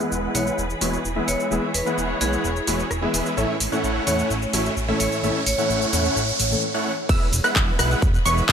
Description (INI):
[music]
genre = EDM, festival progressive house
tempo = 129 BPM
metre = 4/4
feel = straight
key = E major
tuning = A4 = 440 Hz
[part]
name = felt-muted upright piano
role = accompaniment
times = 0.0-6.6 s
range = A2 to C#5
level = -29 LUFS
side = left 3 dB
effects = sidechain pumping, ping-pong delay
[part]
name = rich symphonic string section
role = sustained chords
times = 0.0-8.5 s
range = E3 to C#5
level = -32 LUFS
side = right 1 dB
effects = sidechain pumping, low-pass filter
[part]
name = big supersaw lead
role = riff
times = 0.0-8.4 s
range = G#3 to F#5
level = -25 LUFS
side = right 1 dB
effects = sidechain pumping, low-pass filter, ping-pong delay
[part]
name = big-room dance drum kit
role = drums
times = 0.0-8.5 s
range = crash cymbal, handclaps, hi-hat, rim click, shaker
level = -26 LUFS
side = equal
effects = overdrive
[part]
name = riser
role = sound effects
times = 2.7-6.6 s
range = none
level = -30 LUFS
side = right 2 dB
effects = none
[part]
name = fat analog bass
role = bass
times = 0.1-8.5 s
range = E1 to E2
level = -26 LUFS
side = equal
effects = sidechain pumping
[part]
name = vibraphone with hard mallets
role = melody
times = 0.3-5.8 s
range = G#4 to C#5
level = -30 LUFS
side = equal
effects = ping-pong delay
[part]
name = wide unison pluck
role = arpeggios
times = 7.1-8.4 s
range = C#6 to F#6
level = -24 LUFS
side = right 1 dB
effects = sidechain pumping, ping-pong delay
[part]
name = electronic kick drum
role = drums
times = 7.1-8.5 s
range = none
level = -20 LUFS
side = equal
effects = none
[sound]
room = light reverb, digital ambience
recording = none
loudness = -19 LUFS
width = side -8 dB against mid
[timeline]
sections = 0.0-7.1 A section; 7.1-8.5 B section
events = build-up 0.0-7.1; filter sweep on supersaw synth 0.0-7.1; filter sweep on string section 0.0-7.1; riser 2.7-6.6; break 6.6-7.1; drop 7.1-8.5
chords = 0.0 E; 3.4 A; 7.1 E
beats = 0.12 0.58 1.05 | 1.51 1.98 2.44 2.91 | 3.37 3.84 4.30 4.77 | 5.23 5.70 6.16 6.63 | 7.09 7.56 8.02 8.49